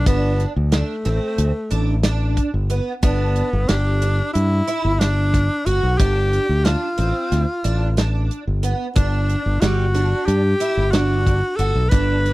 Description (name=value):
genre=progressive instrumental, band music in an uneven meter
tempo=182 BPM (eighths)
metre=9/8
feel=straight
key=G major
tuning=A4 = 439 Hz
part: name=bright tenor saxophone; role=melody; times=0.0-12.3 s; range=A3 to B4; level=-22 LUFS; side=equal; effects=none
part: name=modern bright fingered electric bass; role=bass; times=0.0-12.3 s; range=G1 to G2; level=-19 LUFS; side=equal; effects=none
part: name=picked twelve-string acoustic guitar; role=arpeggios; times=0.1-12.3 s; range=G3 to G4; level=-27 LUFS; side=right 3 dB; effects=ensemble chorus
part: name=modern studio drum kit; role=drums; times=0.1-12.3 s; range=hi-hat, kick drum, snare drum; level=-19 LUFS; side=equal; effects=none
room=studio reverb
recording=dry, close 1970s-style studio recording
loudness=-17 LUFS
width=side -19 dB against mid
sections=0.0-12.3 A section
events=none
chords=0.1 Gsus2; 3.0 G; 6.0 F6/G; 9.0 Gmaj7(no3)